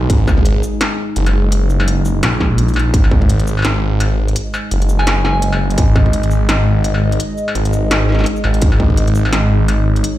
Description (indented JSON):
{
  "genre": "half-time drum and bass",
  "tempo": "169 BPM",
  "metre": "4/4",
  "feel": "swing 57% on 16ths, half-time",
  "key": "unclear",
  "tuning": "A4 = 440 Hz",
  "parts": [
    { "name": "dark analog pad", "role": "sustained chords", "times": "0.0-10.2 s", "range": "G#3 to D#5", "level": "-22 LUFS", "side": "equal", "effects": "chorus, sidechain pumping" },
    { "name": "phased detuned saw bass", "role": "bass", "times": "0.0-10.0 s", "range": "F#1 to A#1", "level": "-14 LUFS", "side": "equal", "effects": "phaser" },
    { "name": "electronic kick drum", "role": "drums", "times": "0.1-3.3, 5.8-6.1, 8.6-9.0 s", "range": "none", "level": "-14 LUFS", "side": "equal", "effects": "distortion, small room ambience" },
    { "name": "industrial drum kit", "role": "drums", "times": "0.1-10.1 s", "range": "hi-hat, shaker, snare drum, struck metal", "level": "-21 LUFS", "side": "equal", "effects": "small room ambience" },
    { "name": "soft synth bell", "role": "melody", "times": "5.0-5.5 s", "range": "G#5", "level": "-25 LUFS", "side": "equal", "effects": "chorus, digital delay" }
  ],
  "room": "little or no reverb",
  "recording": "played on a big sound system in a bare room, large studio reverb",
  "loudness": "-12 LUFS",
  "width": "side -14 dB against mid",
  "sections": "0.0-2.9 A section; 2.9-10.2 A section",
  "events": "drop 0.0-2.9, 2.9-10.2; kick drops out 2.6-2.9",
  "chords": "0.0 G#5"
}